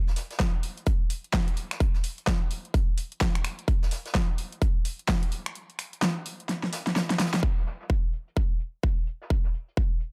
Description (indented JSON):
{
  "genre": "house",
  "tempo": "128 BPM",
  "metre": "4/4",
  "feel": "swing 61% on 16ths",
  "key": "none",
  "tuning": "none",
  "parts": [
    { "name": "jazz brush drum kit", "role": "drums", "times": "0.1-10.1 s", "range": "hi-hat, snare drum", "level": "-44 LUFS", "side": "equal", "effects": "none" },
    { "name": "big-room dance drum kit", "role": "drums", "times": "0.2-7.4 s", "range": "finger snaps, hi-hat, snare drum", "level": "-32 LUFS", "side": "equal", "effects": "overdrive" },
    { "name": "electronic kick drum", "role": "drums", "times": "0.4-9.9 s", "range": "none", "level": "-27 LUFS", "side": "equal", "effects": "overdrive" }
  ],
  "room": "small room ambience",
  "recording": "dark, warm production",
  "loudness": "-28 LUFS",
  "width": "mono",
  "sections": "0.0-7.4 A section; 7.4-10.1 B section",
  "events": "kick drops out 5.6-7.4; drum fill 6.5-7.4",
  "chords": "none"
}